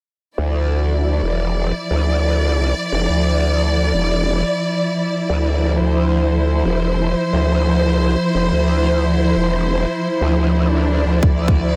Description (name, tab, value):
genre	dark technical drum and bass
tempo	177 BPM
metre	4/4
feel	straight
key	D minor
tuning	A4 = 439 Hz
part	warm symphonic string section	sustained chords	0.4-11.8 s	F3 to D5	-21 LUFS	equal	sidechain pumping
part	growl bass	bass	0.4-11.8 s	E1 to D2	-20 LUFS	equal	chorus
part	swell	sound effects	10.7-11.2 s	none	-27 LUFS	equal	none
part	electronic kick drum	drums	11.2-11.5 s	none	-17 LUFS	equal	none
room	moderate lush hall reverb, RT60 1.7 s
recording	none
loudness	-18 LUFS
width	mono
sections	0.4-11.8 A section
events	swell 10.7-11.2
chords	0.4 Dmadd9